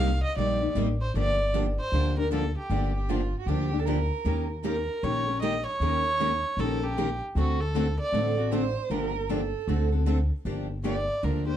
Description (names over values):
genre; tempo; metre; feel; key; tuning
acoustic string swing (jazz manouche); 155 BPM; 4/4; swing 62% on 8ths; G minor; A4 = 440 Hz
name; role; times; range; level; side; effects
warm violin; melody; 0.0-8.4, 10.9-11.6 s; F#4 to F5; -29 LUFS; right 1 dB; none
picked steel-string acoustic guitar; accompaniment; 0.0-11.6 s; C3 to Bb4; -32 LUFS; left 8 dB; none
picked steel-string acoustic guitar; accompaniment; 0.0-11.4 s; C3 to Bb4; -34 LUFS; right 7 dB; none
upright bass; bass; 0.0-11.6 s; G1 to Eb2; -28 LUFS; equal; none
warm violin; second line; 3.0-4.6, 8.4-10.1 s; F4 to C5; -34 LUFS; right 7 dB; none
room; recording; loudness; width
moderate studio reverb, RT60 0.6 s; dark, warm production; -25 LUFS; side -10 dB against mid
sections
0.0-10.5 A section; 10.5-11.6 B section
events
violin solo 10.5-11.6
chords
0.0 Cm9; 1.1 Gm7; 4.3 Eb7; 7.4 D7; 8.9 Gm9; 9.7 D7; 10.5 Gm7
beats
0.37 0.76 | 1.15 1.54 1.93 2.31 | 2.70 3.09 3.48 3.87 | 4.25 4.64 5.03 5.42 | 5.80 6.19 6.58 6.97 | 7.35 7.74 8.13 8.52 | 8.90 9.29 9.68 10.06 | 10.45 10.84 11.23